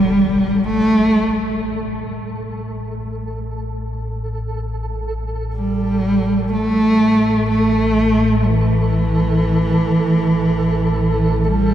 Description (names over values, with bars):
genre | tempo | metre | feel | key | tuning
dark ambient drone | free time | none | none | unclear | A4 = 440 Hz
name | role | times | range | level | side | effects
dark cello | melody | 0.0-11.7 s | E3 to A3 | -16 LUFS | right 1 dB | tape echo
analog drone | drone | 0.0-11.7 s | A1 | -22 LUFS | left 1 dB | wide subtle chorus
flickering grainy texture | texture | 0.0-11.7 s | A4 | -28 LUFS | right 1 dB | built-in reverb
room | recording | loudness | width
wet cathedral reverb, RT60 6.1 s | dark, warm production | -15 LUFS | side -11 dB against mid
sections
0.0-11.7 A section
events
fade-in on synth drone 0.0-11.7; fade-in on synth texture 0.0-11.7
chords
none